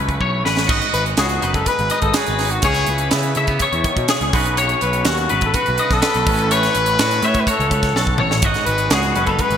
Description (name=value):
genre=math rock and midwest emo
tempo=124 BPM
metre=4/4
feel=straight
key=unclear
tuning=A4 = 439 Hz
part: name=twangy electric guitar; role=accompaniment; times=0.0-9.6 s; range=E2 to A4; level=-25 LUFS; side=right 8 dB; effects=none
part: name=twangy electric guitar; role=arpeggios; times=0.0-9.6 s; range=F#4 to E5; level=-21 LUFS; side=left 5 dB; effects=ensemble chorus, ping-pong delay
part: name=fuzz picked electric bass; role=bass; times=0.0-9.6 s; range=F#1 to C#3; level=-22 LUFS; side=right 1 dB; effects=overdrive
part: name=crisp fusion drum kit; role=drums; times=0.1-9.6 s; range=crash cymbal, hi-hat, kick drum, snare drum, toms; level=-21 LUFS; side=right 1 dB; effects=none
part: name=warm trumpet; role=melody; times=0.9-9.6 s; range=E4 to C#5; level=-21 LUFS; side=left 2 dB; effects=ping-pong delay
room=moderate lush hall reverb, RT60 2.2 s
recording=bright 1980s-style digital production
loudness=-15 LUFS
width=side -8 dB against mid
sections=0.7-9.6 A section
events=drum fill 0.2-0.7, 8.0-8.4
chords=0.0 B7sus2; 0.7 G#m7; 2.6 C#m7; 4.3 Bsus2; 6.3 A6; 8.4 G#m7